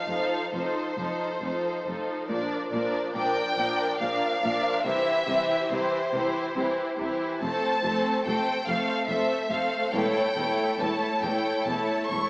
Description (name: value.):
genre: classical, slow romantic movement for string orchestra.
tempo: 70 BPM.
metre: 3/4.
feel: rubato.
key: unclear.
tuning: A4 = 440 Hz.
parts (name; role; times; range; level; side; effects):
rich studio violin section; melody; 0.0-12.3 s; C5 to C#6; -28 LUFS; equal; none.
warm symphonic violin section; second line; 0.0-12.3 s; G4 to D5; -30 LUFS; equal; none.
rich symphonic viola section; accompaniment; 0.0-12.3 s; E3 to E4; -30 LUFS; equal; none.
rich symphonic cello section; bass; 0.1-12.2 s; E2 to C3; -36 LUFS; equal; none.
rich symphonic double bass section; bass; 0.1-12.2 s; E1 to C2; -38 LUFS; equal; none.
room: moderate concert hall reverb, RT60 1.9 s.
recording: small speaker sound.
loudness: -24 LUFS.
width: side -28 dB against mid.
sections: 0.0-12.3 A section.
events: none.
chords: 0.0 F7; 2.3 Bb; 4.9 C; 7.4 F; 9.9 A7/E.